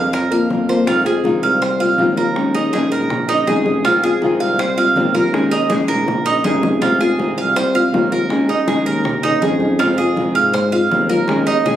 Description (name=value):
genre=latin, Cuban son and guajira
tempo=161 BPM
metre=4/4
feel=straight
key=F minor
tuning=A4 = 440 Hz
part: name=nylon-string guitar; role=accompaniment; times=0.0-11.8 s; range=C3 to Bb4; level=-18 LUFS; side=left 2 dB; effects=none
part: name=Cuban tres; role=arpeggios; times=0.0-11.8 s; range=Eb4 to F5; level=-18 LUFS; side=right 3 dB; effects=none
part: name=warm tuba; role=bass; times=0.0-11.8 s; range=F1 to Ab2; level=-22 LUFS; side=right 1 dB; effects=none
part: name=bongos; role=percussion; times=0.1-11.8 s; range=none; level=-27 LUFS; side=left 3 dB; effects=none
part: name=congas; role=percussion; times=0.1-11.7 s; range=none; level=-28 LUFS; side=equal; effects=none
room=moderate large studio reverb, RT60 1.1 s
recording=recorded on a phone in the room, club reverb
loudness=-14 LUFS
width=side -11 dB against mid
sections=0.9-11.8 A section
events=drum fill 5.9-6.8, 11.3-11.8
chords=0.0 Db6 (rootless); 0.9 Fm7; 2.4 Eb7sus4; 3.8 Fm7; 5.3 Eb7sus4; 6.8 Fm7; 8.3 Eb7sus4; 9.8 Fm7